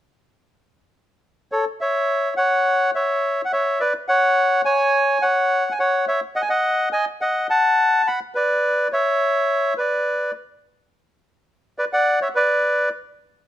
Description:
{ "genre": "tango", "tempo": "105 BPM", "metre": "4/4", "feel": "rubato", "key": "unclear", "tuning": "A4 = 440 Hz", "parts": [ { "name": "bandoneon", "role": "solo", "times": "1.5-12.9 s", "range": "A4 to B5", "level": "-17 LUFS", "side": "equal", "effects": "none" } ], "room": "light reverb", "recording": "none", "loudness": "-17 LUFS", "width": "side -12 dB against mid", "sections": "0.0-1.8 A section; 1.8-13.5 B section", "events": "none", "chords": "0.0 N.C.; 1.8 Bsus4 (rootless); 4.1 N.C.; 6.4 B; 8.6 E5; 10.9 Bm" }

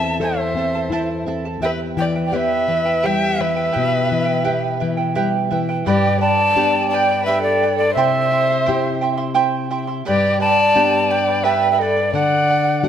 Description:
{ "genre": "andean folk", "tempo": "86 BPM", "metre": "3/4", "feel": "straight", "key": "unclear", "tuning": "A4 = 441 Hz", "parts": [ { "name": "mellow hollow quena", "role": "melody", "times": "0.0-12.9 s", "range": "D5 to A5", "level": "-19 LUFS", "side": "right 1 dB", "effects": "none" }, { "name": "dark violin", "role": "second line", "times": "0.0-12.9 s", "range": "G4 to E5", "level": "-23 LUFS", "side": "left 2 dB", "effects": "none" }, { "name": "charango", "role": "accompaniment", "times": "0.0-12.9 s", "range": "E4 to C6", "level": "-22 LUFS", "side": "right 7 dB", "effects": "none" }, { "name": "nylon-string guitar", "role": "accompaniment", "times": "0.0-12.9 s", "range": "E2 to A4", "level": "-22 LUFS", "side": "left 4 dB", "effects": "none" } ], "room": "moderate scoring stage reverb, RT60 2.0 s", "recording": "none", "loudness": "-16 LUFS", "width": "side -9 dB against mid", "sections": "0.0-5.9 A section; 5.9-12.9 B section", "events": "none", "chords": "0.0 Am; 1.6 Em; 5.9 G; 8.0 C; 10.1 G; 12.1 D" }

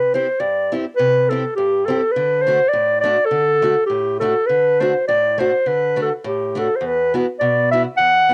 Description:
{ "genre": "alpine folk", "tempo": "103 BPM", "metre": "2/4", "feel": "swing 55% on 8ths, rubato", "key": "unclear", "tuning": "A4 = 441 Hz", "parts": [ { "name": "warm clarinet", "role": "melody", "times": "0.0-8.3 s", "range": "G4 to F#5", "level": "-18 LUFS", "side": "equal", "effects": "cassette tape, plate reverb" }, { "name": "picked acoustic archtop guitar", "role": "accompaniment", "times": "0.0-8.3 s", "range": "E2 to G4", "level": "-26 LUFS", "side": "equal", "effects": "cassette tape, plate reverb" } ], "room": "moderate booth ambience, RT60 0.2 s", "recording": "home recording on cassette", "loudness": "-18 LUFS", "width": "mono", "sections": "0.0-8.3 A section", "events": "none", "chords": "0.0 C; 2.1 D; 6.8 Esus2" }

